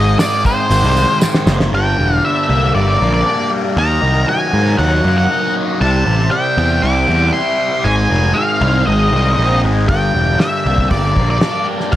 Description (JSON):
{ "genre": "psychedelic rock", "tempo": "118 BPM", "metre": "4/4", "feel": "straight", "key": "unclear", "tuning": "A4 = 438 Hz", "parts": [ { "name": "octave-fuzz lead guitar", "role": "melody", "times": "0.0-12.0 s", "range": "C5 to D6", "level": "-17 LUFS", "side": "left 1 dB", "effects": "distortion, analog delay" }, { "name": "overdriven combo organ", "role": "sustained chords", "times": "0.0-12.0 s", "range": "Eb3 to E5", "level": "-28 LUFS", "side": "right 2 dB", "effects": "none" }, { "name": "fuzz guitar", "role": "riff", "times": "0.0-12.0 s", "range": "G2 to E4", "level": "-18 LUFS", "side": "left 1 dB", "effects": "distortion, phaser" }, { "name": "fuzz picked electric bass", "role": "bass", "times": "0.0-12.0 s", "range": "E1 to Ab2", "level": "-15 LUFS", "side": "equal", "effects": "overdrive" }, { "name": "cloth-damped thuddy drum kit", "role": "drums", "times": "0.2-1.7, 9.9-12.0 s", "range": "hi-hat, kick drum, snare drum", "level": "-17 LUFS", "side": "equal", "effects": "none" }, { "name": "tambourine", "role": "percussion", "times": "0.2-1.6 s", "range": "none", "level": "-31 LUFS", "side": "right 4 dB", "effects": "none" } ], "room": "little or no reverb", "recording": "echo-heavy mix", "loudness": "-12 LUFS", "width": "side -13 dB against mid", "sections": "0.0-1.7 A section; 1.7-12.0 B section", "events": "drum fill 1.2-1.7", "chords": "0.0 Ab; 1.7 Gm; 3.8 Ebm; 5.8 C; 7.9 Ab; 9.9 Gm" }